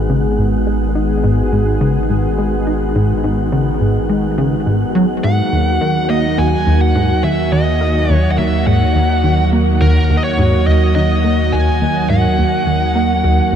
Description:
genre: ambient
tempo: 105 BPM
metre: 4/4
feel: straight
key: G# minor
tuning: A4 = 442 Hz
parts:
  - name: lush unison pad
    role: sustained chords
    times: 0.0-13.6 s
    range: D#3 to G#4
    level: -18 LUFS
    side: right 1 dB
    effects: chorus
  - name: plucky analog bass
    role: riff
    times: 0.0-13.6 s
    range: D#2 to D#4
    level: -17 LUFS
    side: equal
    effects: lush chorus, ping-pong delay
  - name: warm sub bass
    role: bass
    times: 0.0-13.6 s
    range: G#1 to D#2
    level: -19 LUFS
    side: equal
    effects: none
  - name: wind-like tuned noise texture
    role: texture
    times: 0.0-13.6 s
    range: F#4 to F#5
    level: -27 LUFS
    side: equal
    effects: built-in reverb
  - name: bluesy overdriven lead guitar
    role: melody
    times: 5.2-13.6 s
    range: A#4 to G#5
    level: -19 LUFS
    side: equal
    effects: distortion, ping-pong delay
room: moderate huge ambient reverb, RT60 8.5 s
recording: dark, warm production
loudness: -12 LUFS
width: side -8 dB against mid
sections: 0.0-13.6 A section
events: none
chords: 0.0 G#m; 5.2 D#m

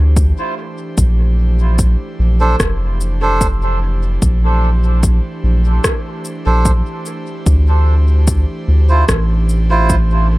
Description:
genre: ambient dub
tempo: 74 BPM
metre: 4/4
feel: straight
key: unclear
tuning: A4 = 441 Hz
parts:
  - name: airy breathy pad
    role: sustained chords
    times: 0.0-10.4 s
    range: E3 to C5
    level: -27 LUFS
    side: right 1 dB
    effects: chorus
  - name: soft dub sub bass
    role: bass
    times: 0.0-10.4 s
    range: F1 to D2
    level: -12 LUFS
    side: equal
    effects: tube saturation
  - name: electronic kick drum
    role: drums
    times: 0.2-10.1 s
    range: none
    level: -17 LUFS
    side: equal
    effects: overdrive
  - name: electronic shaker and rim click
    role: drums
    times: 0.2-10.1 s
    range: none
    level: -21 LUFS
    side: left 1 dB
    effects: overdrive, dub echo
  - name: melodica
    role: stabs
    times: 2.4-10.0 s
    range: D4 to C5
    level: -20 LUFS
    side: right 2 dB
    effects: dub echo
room: little or no reverb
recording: echo-heavy mix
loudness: -12 LUFS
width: side -19 dB against mid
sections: 0.0-10.4 A section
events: none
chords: 0.0 D7sus2; 1.0 Bbmaj9; 7.5 Dm9

